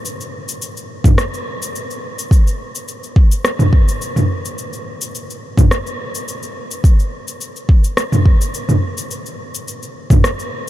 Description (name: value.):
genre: downtempo.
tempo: 106 BPM.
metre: 4/4.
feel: straight.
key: none.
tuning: none.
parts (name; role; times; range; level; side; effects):
deep house drum kit; drums; 0.1-10.5 s; cabasa, rim click, toms; -19 LUFS; equal; none.
electronic kick drum; drums; 1.0-10.2 s; none; -11 LUFS; equal; none.
room: light reverb.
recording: none.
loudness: -14 LUFS.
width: side -14 dB against mid.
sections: 0.0-10.7 A section.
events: none.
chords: none.